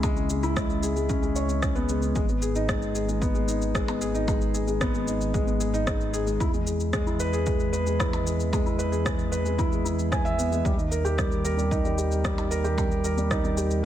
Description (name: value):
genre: piano and strings electronica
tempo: 113 BPM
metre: 4/4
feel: straight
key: G# harmonic minor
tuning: A4 = 440 Hz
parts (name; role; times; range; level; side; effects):
- felt-muted upright piano; riff; 0.0-13.8 s; G3 to G#5; -26 LUFS; left 1 dB; ping-pong delay
- dark detuned saw bass; bass; 0.0-13.8 s; G#1 to E2; -29 LUFS; right 1 dB; sidechain pumping
- electronic kick drum; drums; 0.0-13.4 s; none; -29 LUFS; right 1 dB; overdrive
- electronic shaker, percussion blips and rim click; drums; 0.0-13.8 s; none; -34 LUFS; equal; none
room: light reverb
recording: none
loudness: -23 LUFS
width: side -11 dB against mid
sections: 0.0-13.8 A section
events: none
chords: 0.0 C#m7; 2.2 G#m; 6.4 E; 10.7 D#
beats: | 0.03 0.56 1.09 1.62 | 2.16 2.69 3.22 3.75 | 4.28 4.81 5.34 5.87 | 6.40 6.93 7.47 8.00 | 8.53 9.06 9.59 10.12 | 10.65 11.18 11.71 12.24 | 12.78 13.31 13.84